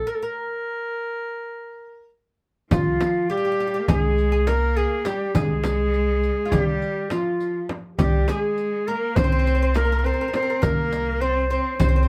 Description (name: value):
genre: Turkish makam ensemble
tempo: 205 BPM (eighths)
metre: 9/8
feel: straight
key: C makam ussak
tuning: A4 = 440 Hz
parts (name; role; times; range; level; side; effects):
- mellow clarinet; melody; 0.0-12.1 s; F4 to C5; -27 LUFS; equal; none
- oud; second line; 0.0-12.1 s; F4 to C5; -33 LUFS; equal; none
- rich cello; second line; 2.7-12.1 s; F3 to C4; -32 LUFS; equal; none
- upright bass; bass; 2.7-12.0 s; C2; -25 LUFS; equal; none
- darbuka; percussion; 2.7-11.9 s; none; -29 LUFS; equal; none
- frame drum; percussion; 2.7-11.9 s; none; -28 LUFS; equal; none
- riq; percussion; 2.7-11.9 s; none; -39 LUFS; equal; none
room: light reverb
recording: band playing live in one room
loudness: -23 LUFS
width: mono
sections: 0.0-2.7 A section; 2.7-12.1 B section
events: break 0.1-2.7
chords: none